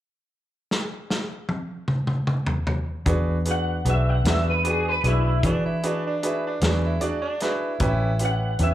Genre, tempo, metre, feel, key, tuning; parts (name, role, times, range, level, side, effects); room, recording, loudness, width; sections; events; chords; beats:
slow blues; 51 BPM (dotted quarters); 12/8; straight; E mixolydian; A4 = 443 Hz
warm soul drum kit; drums; 0.7-8.7 s; hi-hat, kick drum, snare drum, toms; -26 LUFS; equal
bright upright piano; accompaniment; 3.1-8.7 s; C#4 to D5; -27 LUFS; right 1 dB; slapback echo
vintage muted fingered electric bass; bass; 3.1-8.7 s; A1 to E3; -23 LUFS; equal
electric guitar through a small old amp; melody; 3.5-8.7 s; E4 to F#5; -26 LUFS; equal; ensemble chorus, slapback echo
warm tenor saxophone; second line; 5.5-8.2 s; D4 to E4; -30 LUFS; right 3 dB; slapback echo
light reverb, small room ambience; live gig heard through the venue's PA, club reverb; -21 LUFS; side -13 dB against mid
0.0-3.1 A section; 3.1-8.7 B section
drum fill 0.7-3.1
0.0 N.C.; 3.1 E7; 7.8 A7
0.70 1.88 | 3.06 4.24 5.43 6.61 | 7.80